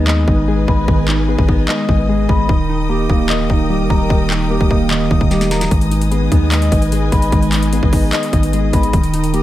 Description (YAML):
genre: hip hop, trap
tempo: 149 BPM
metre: 4/4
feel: half-time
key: G# harmonic minor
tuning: A4 = 438 Hz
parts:
  - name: soft electric-piano-like synth keys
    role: accompaniment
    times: 0.0-9.4 s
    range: D#3 to D#5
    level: -19 LUFS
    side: left 1 dB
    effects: chorus
  - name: warm studio string section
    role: sustained chords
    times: 0.0-9.4 s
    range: A#4 to D#6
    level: -27 LUFS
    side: left 1 dB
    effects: none
  - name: mellow electric guitar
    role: arpeggios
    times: 0.0-9.4 s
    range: D#3 to B5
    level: -20 LUFS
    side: right 2 dB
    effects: spring reverb, digital delay
  - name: long sustained 808-style bass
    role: bass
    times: 0.0-9.4 s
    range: C#1 to D#2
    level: -18 LUFS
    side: equal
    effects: none
  - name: trap drum kit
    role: drums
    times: 0.1-9.4 s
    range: handclaps, hi-hat, kick drum, snare drum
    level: -17 LUFS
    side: equal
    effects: overdrive
room: little or no reverb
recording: none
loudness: -12 LUFS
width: side -14 dB against mid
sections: 0.0-9.4 A section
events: break 0.0-5.7; drum fill 5.3-5.7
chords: 0.0 G#m; 2.5 D#; 5.7 G#m